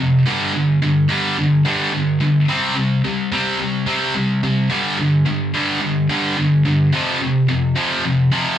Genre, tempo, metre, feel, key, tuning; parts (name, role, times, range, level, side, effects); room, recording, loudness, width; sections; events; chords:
rock; 108 BPM; 4/4; straight; A4 = 440 Hz
high-gain distorted guitar; solo; 0.0-8.6 s; F2 to C4; -15 LUFS; equal; distortion
moderate studio reverb, RT60 0.8 s; band playing live in one room; -15 LUFS; side -10 dB against mid
0.0-8.6 A section
0.3 G5; 2.5 C5; 4.7 G5; 6.9 F5